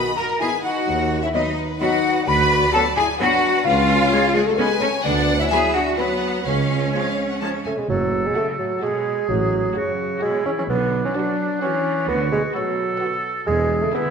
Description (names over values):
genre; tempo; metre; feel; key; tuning
cinematic, playful, whimsical film cue; 129 BPM; 3/4; straight; F# minor; A4 = 440 Hz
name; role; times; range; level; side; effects
clear chamber violin section; melody; 0.0-14.1 s; B4 to A5; -30 LUFS; left 4 dB; none
folk marimba with soft mallets; melody; 0.0-7.6 s; G#4 to B5; -26 LUFS; left 7 dB; none
hollow concert flute; second line; 0.0-7.6 s; G#4 to B5; -25 LUFS; left 2 dB; none
rich studio violin section; second line; 0.0-14.1 s; G#4 to B5; -29 LUFS; left 4 dB; none
warm oboe; second line; 0.0-14.1 s; D4 to B5; -29 LUFS; right 1 dB; none
dark bassoon; accompaniment; 0.0-14.1 s; C#3 to D4; -24 LUFS; right 1 dB; none
rich symphonic viola section; accompaniment; 0.0-14.1 s; D#3 to F#4; -32 LUFS; right 1 dB; none
mellow French horn section; sustained chords; 0.0-14.1 s; E#3 to C#5; -27 LUFS; left 4 dB; none
rich symphonic cello section; bass; 0.0-14.1 s; F#2 to B4; -24 LUFS; right 2 dB; none
mellow tuba; bass; 0.9-13.8 s; E1 to D#2; -28 LUFS; right 5 dB; none
rich chamber double bass section; bass; 0.9-13.8 s; F#1 to E2; -28 LUFS; right 3 dB; none
room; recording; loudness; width
wet scoring stage reverb, RT60 1.6 s; none; -18 LUFS; side -6 dB against mid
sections
0.0-7.9 A section; 7.9-14.1 B section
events
none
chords
0.0 B; 0.9 B/D#; 2.3 Bm/D; 3.7 C#; 5.1 Bm/D; 6.5 C#; 7.9 F#m; 9.3 F#m/A; 10.7 Bm; 12.1 Bm/D; 13.5 E7